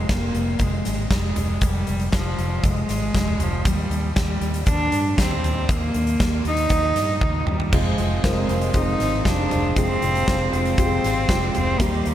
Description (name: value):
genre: piano-driven pop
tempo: 118 BPM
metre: 4/4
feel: straight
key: unclear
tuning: A4 = 440 Hz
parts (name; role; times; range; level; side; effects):
- warm cello; melody; 0.0-12.1 s; F3 to Eb4; -24 LUFS; equal; none
- fingered electric bass; bass; 0.0-12.1 s; F1 to G2; -25 LUFS; equal; none
- huge arena drum kit; drums; 0.1-12.1 s; crash cymbal, hi-hat, kick drum, snare drum, toms; -23 LUFS; equal; none
- felt-muted upright piano; accompaniment; 7.7-12.1 s; Bb2 to Bb4; -29 LUFS; left 3 dB; analog chorus
- picked plugged-in steel-string acoustic guitar; riff; 7.7-12.1 s; F2 to G4; -29 LUFS; right 7 dB; none
room: moderate cathedral reverb, RT60 6.1 s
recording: dreamy mix soaked in reverb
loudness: -19 LUFS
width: side -11 dB against mid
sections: 0.0-12.1 A section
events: drum fill 7.2-7.7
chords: 0.0 Fm; 3.7 Eb; 7.7 Fm